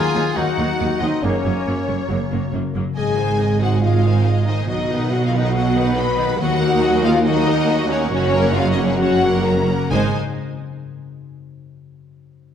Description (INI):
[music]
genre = cinematic, heroic adventure film score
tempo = 138 BPM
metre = 4/4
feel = straight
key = unclear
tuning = A4 = 440 Hz
[part]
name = warm symphonic violin section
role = melody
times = 0.0-10.2 s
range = Db5 to B5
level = -27 LUFS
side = left 3 dB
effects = none
[part]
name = bright large flute ensemble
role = second line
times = 0.0-2.5 s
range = Db5 to Ab5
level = -32 LUFS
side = left 3 dB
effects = none
[part]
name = clear clarinet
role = second line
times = 0.0-2.5 s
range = Db4 to Ab4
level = -31 LUFS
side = equal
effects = none
[part]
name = clear studio violin section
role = second line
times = 0.0-10.2 s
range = Gb4 to Ab5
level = -28 LUFS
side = left 1 dB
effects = none
[part]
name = dark French horn section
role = sustained chords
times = 0.0-10.1 s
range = Db4 to B4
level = -22 LUFS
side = left 4 dB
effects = none
[part]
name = concert harp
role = arpeggios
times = 0.0-10.2 s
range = Gb2 to C5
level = -27 LUFS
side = left 7 dB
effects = none
[part]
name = mellow trumpet section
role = stabs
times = 0.0-2.5 s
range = Bb3 to F4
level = -28 LUFS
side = equal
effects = none
[part]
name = rich symphonic cello section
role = bass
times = 0.0-10.2 s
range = Eb2 to B2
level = -22 LUFS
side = right 3 dB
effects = none
[part]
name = clear symphonic viola section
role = accompaniment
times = 0.2-10.2 s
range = Eb3 to Ab4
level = -27 LUFS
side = right 2 dB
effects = none
[part]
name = rich studio double bass section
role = bass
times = 0.2-10.2 s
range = Gb1 to Eb2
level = -23 LUFS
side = right 5 dB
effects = none
[part]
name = bright trombone section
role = sustained chords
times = 0.4-2.3 s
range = Db3 to Bb3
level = -33 LUFS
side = right 4 dB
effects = none
[sound]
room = wet scoring stage reverb, RT60 1.9 s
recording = none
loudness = -16 LUFS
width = side -8 dB against mid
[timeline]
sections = 0.0-3.0 A section; 3.0-9.9 B section; 9.9-11.7 C section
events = slowing down 5.5-9.9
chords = 0.0 Ebm; 1.2 Gb; 3.0 Ab; 4.7 B; 6.4 Ebm; 8.1 Gb; 9.9 Ab